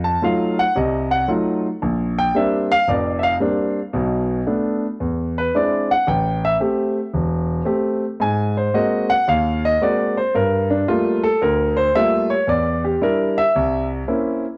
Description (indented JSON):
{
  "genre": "jazz",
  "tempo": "113 BPM",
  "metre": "4/4",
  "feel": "swing 67% on 8ths",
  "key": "unclear",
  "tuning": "A4 = 440 Hz",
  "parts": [
    { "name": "warm grand piano", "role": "solo", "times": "0.0-14.4 s", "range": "E1 to A5", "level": "-20 LUFS", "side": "equal", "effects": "cassette tape" }
  ],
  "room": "moderate spring reverb, RT60 2.1 s",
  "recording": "home recording on cassette",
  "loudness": "-19 LUFS",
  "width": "mono",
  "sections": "0.0-14.6 A section",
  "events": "grand piano solo 0.0-14.6",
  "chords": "0.0 F7b9; 1.8 Bb69; 3.9 Bm7; 5.0 E7b13; 6.1 Am7; 8.2 G#9; 10.3 Gm9; 12.5 Em7b5; 13.5 C7b9"
}